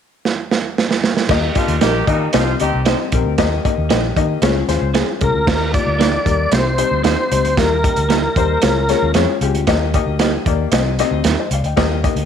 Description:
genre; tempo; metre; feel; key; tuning
uptempo 1960s-style soul; 114 BPM; 4/4; straight; Eb major; A4 = 435 Hz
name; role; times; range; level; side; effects
crunchy breakbeat drum kit; drums; 0.3-12.3 s; crash cymbal, hi-hat, kick drum, snare drum; -18 LUFS; right 4 dB; none
dark upright piano; accompaniment; 1.3-12.2 s; G3 to G5; -20 LUFS; left 13 dB; none
vintage muted fingered electric bass; bass; 1.3-12.3 s; Bb1 to Eb3; -20 LUFS; equal; none
clear horn section; second line; 1.6-2.8 s; Bb2 to G4; -22 LUFS; right 1 dB; none
electric guitar through a small old amp; stabs; 1.8-11.4 s; Bb3 to C5; -26 LUFS; right 12 dB; wide subtle chorus, tape echo
tonewheel organ; melody; 5.2-9.1 s; Bb4 to D5; -19 LUFS; equal; overdrive, chorus vibrato
room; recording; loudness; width
light reverb, small room reverb; 1960s-style stereo with parts hard left and right; -14 LUFS; side -8 dB against mid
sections
0.0-1.3 A section; 1.3-5.5 B section; 5.5-12.3 C section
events
drum fill 0.2-1.3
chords
0.0 N.C.; 1.3 Eb; 2.3 Cm; 3.4 Eb; 4.4 Db; 5.5 Eb; 6.5 Cm; 7.6 Eb; 8.6 Db; 9.7 Eb; 10.7 Cm

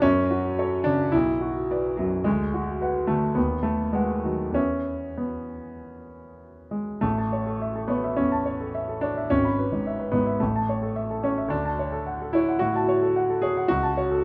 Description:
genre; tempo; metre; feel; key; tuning
classical, romantic character piece for solo piano; 93-111 BPM; 4/4; rubato; A major; A4 = 440 Hz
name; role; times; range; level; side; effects
clear grand piano; solo; 0.0-14.2 s; G#1 to B5; -25 LUFS; equal; none
room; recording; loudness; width
light reverb; none; -25 LUFS; mono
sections
0.0-7.0 A section; 7.0-14.2 B section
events
none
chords
0.0 F#m; 1.1 Bm; 2.3 Bm/D; 3.4 B7/D#; 4.6 E; 7.0 A; 9.3 E/G#; 10.4 A; 11.5 Dmaj7; 13.7 A/C#

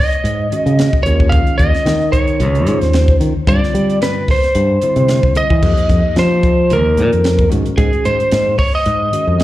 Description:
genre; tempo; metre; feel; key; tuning
electric jazz fusion; 111 BPM; 4/4; swing 54% on 16ths; unclear; A4 = 440 Hz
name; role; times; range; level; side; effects
lightly driven lead guitar; melody; 0.0-9.4 s; Ab4 to F5; -16 LUFS; equal; slapback echo
crisp fusion drum kit; drums; 0.1-9.4 s; crash cymbal, hi-hat, kick drum, snare drum; -16 LUFS; equal; none
fingered electric bass; bass; 0.2-9.4 s; Db2 to G3; -15 LUFS; equal; none
bell-like tine electric piano; accompaniment; 0.5-9.4 s; D3 to Eb5; -22 LUFS; left 2 dB; medium stereo tremolo, slapback echo
room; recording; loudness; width
small room reverb; live gig heard through the venue's PA, club reverb; -11 LUFS; side -15 dB against mid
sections
0.0-5.6 A section; 5.6-9.4 A section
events
tine electric piano fill 9.1-9.4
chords
0.0 Ab7sus4; 1.1 Eb9sus4; 3.5 G7sus4; 5.6 F9sus4; 7.5 Ab7sus4

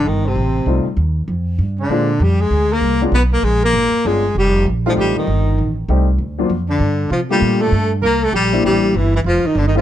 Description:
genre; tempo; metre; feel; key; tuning
jazz; 196 BPM; 4/4; swing 63% on 8ths; F mixolydian; A4 = 440 Hz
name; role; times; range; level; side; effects
breathy baritone saxophone; melody; 0.0-9.8 s; C3 to B3; -18 LUFS; left 2 dB; plate reverb
breathy tenor saxophone; second line; 0.0-9.8 s; C4 to B4; -23 LUFS; right 6 dB; none
upright bass; bass; 0.0-9.8 s; F1 to C3; -18 LUFS; right 1 dB; none
warm baby grand piano; accompaniment; 0.7-9.8 s; F#3 to G4; -19 LUFS; left 4 dB; none
room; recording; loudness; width
light reverb; dark, warm production; -14 LUFS; side -11 dB against mid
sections
0.0-9.8 A section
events
none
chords
0.0 F9; 1.9 Bb9; 3.1 Bdim7; 4.3 F9; 5.6 Am7b5; 6.2 D7alt; 6.8 Gm7; 8.0 C9; 9.3 F7sus2

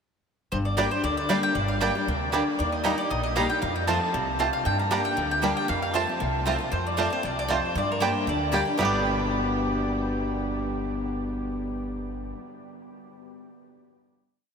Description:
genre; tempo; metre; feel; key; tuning
bluegrass; 232 BPM; 4/4; straight; unclear; A4 = 441 Hz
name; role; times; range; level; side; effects
mandolin; melody; 0.5-12.3 s; Bb4 to Bb5; -30 LUFS; equal; ping-pong delay
picked steel-string acoustic guitar; accompaniment; 0.5-12.4 s; F2 to G4; -29 LUFS; left 2 dB; none
upright bass; bass; 0.5-12.3 s; G1 to G2; -32 LUFS; equal; none
bluegrass banjo; arpeggios; 0.8-12.3 s; G3 to G4; -31 LUFS; right 3 dB; none
mandolin; stabs; 0.8-12.4 s; Bb3 to Bb5; -30 LUFS; right 3 dB; none
room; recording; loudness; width
wet huge ambient reverb, RT60 9.3 s; dreamy mix soaked in reverb; -23 LUFS; side -6 dB against mid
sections
0.5-8.8 A section; 8.8-10.8 final chord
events
none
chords
0.5 Gm; 2.6 Eb; 3.6 F; 4.7 Gm; 5.7 F; 7.8 Gm; 8.8 G

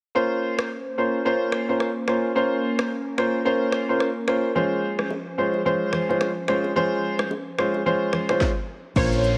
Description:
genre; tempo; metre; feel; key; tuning
afrobeats; 109 BPM; 4/4; swing 58% on 16ths; Bb minor; A4 = 438 Hz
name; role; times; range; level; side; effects
clear concert grand piano; accompaniment; 0.1-9.4 s; Ab3 to C5; -25 LUFS; equal; cassette tape
airy breathy pad; sustained chords; 0.6-8.4 s; F3 to C5; -33 LUFS; equal; chorus, cassette tape
afro-pop drum kit; drums; 0.6-9.4 s; crash cymbal, finger snaps, kick drum, rim click, shaker, snare drum; -31 LUFS; equal; cassette tape
congas and bongos; percussion; 4.6-9.1 s; none; -36 LUFS; equal; none
glassy wavetable pluck; melody; 9.0-9.2 s; Db5; -27 LUFS; equal; chorus, cassette tape
fingered electric bass; bass; 9.0-9.4 s; Bb1; -25 LUFS; equal; none
downlifter; sound effects; 9.0-9.4 s; none; -36 LUFS; equal; none
room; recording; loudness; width
light reverb, digital ambience; home recording on cassette; -24 LUFS; mono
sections
0.2-9.0 A section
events
stop 8.4-9.0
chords
0.2 Bbmadd9; 4.6 Dbmaj7

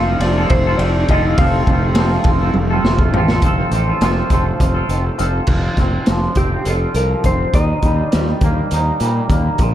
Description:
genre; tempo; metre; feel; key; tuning
psychedelic rock; 204 BPM (eighths); 7/8; straight; F mixolydian; A4 = 437 Hz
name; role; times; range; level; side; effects
clean lap steel guitar; melody; 0.0-3.1, 6.4-8.4 s; G4 to F5; -23 LUFS; left 1 dB; dub echo
hand-pumped harmonium; sustained chords; 0.0-5.5 s; C3 to C5; -27 LUFS; right 4 dB; none
twangy electric guitar; riff; 0.0-9.7 s; Bb2 to A4; -21 LUFS; right 1 dB; phaser, double-tracked left and right, dub echo
fuzz fingered electric bass; bass; 0.0-9.7 s; F1 to Bb2; -18 LUFS; equal; overdrive
raw garage drum kit; drums; 0.2-9.7 s; crash cymbal, hi-hat, kick drum, ride cymbal, snare drum, toms; -18 LUFS; equal; none
room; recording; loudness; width
studio reverb; echo-heavy mix; -13 LUFS; side -12 dB against mid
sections
0.0-3.4 A section; 3.4-5.5 B section; 5.5-9.7 C section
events
drum fill 2.5-3.4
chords
0.0 F; 5.5 F5; 7.5 Eb

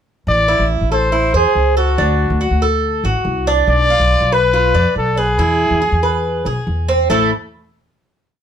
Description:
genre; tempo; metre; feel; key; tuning
latin, Cuban son and guajira; 140 BPM; 4/4; straight; A harmonic minor; A4 = 441 Hz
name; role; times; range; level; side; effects
warm trumpet; melody; 0.3-7.3 s; F#4 to D5; -16 LUFS; left 2 dB; none
upright bass; bass; 0.3-7.3 s; A1 to F2; -17 LUFS; equal; none
Cuban tres; arpeggios; 0.5-7.3 s; A3 to D5; -18 LUFS; right 3 dB; none
room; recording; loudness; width
light reverb; none; -13 LUFS; side -8 dB against mid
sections
0.3-7.1 verse; 7.1-8.4 final chord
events
none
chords
0.3 Am; 2.0 D; 3.7 Bdim; 5.4 E; 7.1 A5

